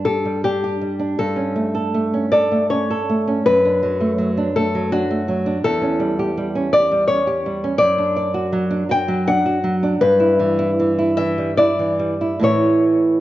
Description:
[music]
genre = romantic duo for nylon-string guitar and classical guitar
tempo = 66-85 BPM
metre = 3/4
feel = rubato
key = D major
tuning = A4 = 441 Hz
[part]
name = nylon-string guitar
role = accompaniment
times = 0.0-13.2 s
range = E2 to D5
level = -19 LUFS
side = right 2 dB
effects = none
[part]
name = nylon-string guitar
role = melody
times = 0.1-13.2 s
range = F#4 to G5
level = -19 LUFS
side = left 2 dB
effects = none
[sound]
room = moderate recital hall reverb, RT60 1.6 s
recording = worn, warbling old tape, cassette tape, warbly pitch drift, nothing above 7.7 kHz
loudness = -16 LUFS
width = side -14 dB against mid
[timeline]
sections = 0.0-13.2 A section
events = none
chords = 0.0 G5; 1.2 A7/G; 3.5 D/F#; 5.6 A7/E; 7.8 D/F#; 10.0 Em/G; 12.4 A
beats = 0.43 | 1.18 1.93 2.70 | 3.46 4.19 4.92 | 5.64 6.36 7.09 | 7.79 8.53 9.28 | 10.02 10.78 11.58 | 12.45

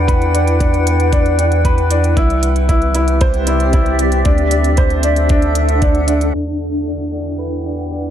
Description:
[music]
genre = piano and strings electronica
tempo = 115 BPM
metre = 4/4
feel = straight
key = E minor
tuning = A4 = 440 Hz
[part]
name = granular cloud pad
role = sustained chords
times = 0.0-8.1 s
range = C4 to G5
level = -19 LUFS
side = equal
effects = built-in reverb, sidechain pumping
[part]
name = clear baby grand piano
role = riff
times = 0.0-8.1 s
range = D4 to C5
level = -19 LUFS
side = left 1 dB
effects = low-pass filter, digital delay
[part]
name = round analog bass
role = bass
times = 0.0-8.1 s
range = C2 to E2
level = -17 LUFS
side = equal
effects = sidechain pumping
[part]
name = electronic kick drum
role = drums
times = 0.1-5.9 s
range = none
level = -15 LUFS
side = equal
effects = none
[part]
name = organic electronic drum kit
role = drums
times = 0.1-6.4 s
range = crash cymbal, hi-hat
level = -26 LUFS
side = right 4 dB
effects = none
[sound]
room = light reverb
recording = low-pass filter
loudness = -12 LUFS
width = side -10 dB against mid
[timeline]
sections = 0.0-6.3 A section; 6.3-8.1 B section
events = filter sweep on grand piano 6.3-8.1; filter sweep 6.3-8.1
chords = 0.0 Em7; 2.2 Cmaj7; 4.3 D7; 6.3 Em7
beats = | 0.08 0.60 1.13 1.65 | 2.17 2.69 3.21 3.73 | 4.26 4.78 5.30 5.82 | 6.34 6.87 7.39 7.91

